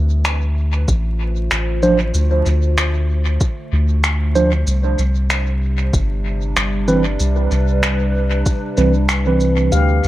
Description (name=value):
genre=ambient dub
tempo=95 BPM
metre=4/4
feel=swing 57% on 16ths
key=unclear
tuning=A4 = 443 Hz
part: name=warbly tape-like pad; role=sustained chords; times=0.0-10.1 s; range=C3 to E5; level=-26 LUFS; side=equal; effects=chorus, built-in reverb, phaser
part: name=soft dub sub bass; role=bass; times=0.0-10.1 s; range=G1 to D2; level=-16 LUFS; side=equal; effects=none
part: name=electronic finger snaps and shaker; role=drums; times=0.2-10.1 s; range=none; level=-23 LUFS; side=equal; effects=dub echo
part: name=electronic kick drum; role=drums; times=0.9-8.6 s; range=none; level=-17 LUFS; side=equal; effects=none
part: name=mellow tine electric piano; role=stabs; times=1.8-9.7 s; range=E3 to C5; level=-19 LUFS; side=right 2 dB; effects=medium stereo tremolo, dub echo
part: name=handpan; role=arpeggios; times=9.7-10.1 s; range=G4 to F5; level=-18 LUFS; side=left 6 dB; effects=none
room=light reverb, digital ambience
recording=vinyl crackle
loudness=-15 LUFS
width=side -15 dB against mid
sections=0.0-10.1 A section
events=fade-in on ambient pad 0.0-10.1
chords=0.0 Dm7; 4.7 Cmaj7